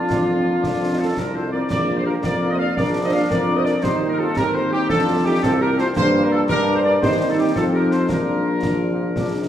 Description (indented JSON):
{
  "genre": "military-style march for wind band",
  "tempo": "113 BPM (dotted quarters)",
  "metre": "6/8",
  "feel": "straight",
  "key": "Bb major",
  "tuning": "A4 = 443 Hz",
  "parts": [
    { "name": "dark trumpet section", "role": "melody", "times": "0.0-9.5 s", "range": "F4 to F5", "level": "-25 LUFS", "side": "equal", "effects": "none" },
    { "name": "mellow large flute ensemble", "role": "second line", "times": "0.0-9.5 s", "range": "D4 to D5", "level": "-28 LUFS", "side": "equal", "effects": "none" },
    { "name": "warm woodwind section", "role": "second line", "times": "0.0-9.5 s", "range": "F4 to F5", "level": "-26 LUFS", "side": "left 1 dB", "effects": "none" },
    { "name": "mellow trombone section", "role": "sustained chords", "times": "0.0-9.5 s", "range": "Bb3 to F4", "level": "-26 LUFS", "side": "right 2 dB", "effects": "none" },
    { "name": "warm tuba", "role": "bass", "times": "0.1-9.5 s", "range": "Bb1 to G2", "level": "-22 LUFS", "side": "right 1 dB", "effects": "none" },
    { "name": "concert snare drum, concert bass drum and clash cymbals", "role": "drums", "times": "0.1-9.5 s", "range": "none", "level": "-26 LUFS", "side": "equal", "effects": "none" },
    { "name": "mellow French horn section", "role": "accompaniment", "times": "0.3-9.5 s", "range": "F3 to G4", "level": "-26 LUFS", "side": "left 3 dB", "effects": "none" }
  ],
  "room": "wet recital hall reverb, RT60 1.5 s",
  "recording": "recorded in a church or concert hall",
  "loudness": "-17 LUFS",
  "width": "side -10 dB against mid",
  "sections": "0.0-9.5 A section",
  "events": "none",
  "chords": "0.0 Bb/F; 0.6 F; 1.7 Bb; 3.8 Cm/Eb; 4.9 F; 6.0 Gm; 7.0 Cm/Eb; 7.6 F5; 8.1 Bb",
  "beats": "0.10 | 0.64 1.17 | 1.70 2.23 | 2.77 3.30 | 3.83 4.37 | 4.90 5.43 | 5.96 6.50 | 7.03 7.57 | 8.10 8.63 | 9.16"
}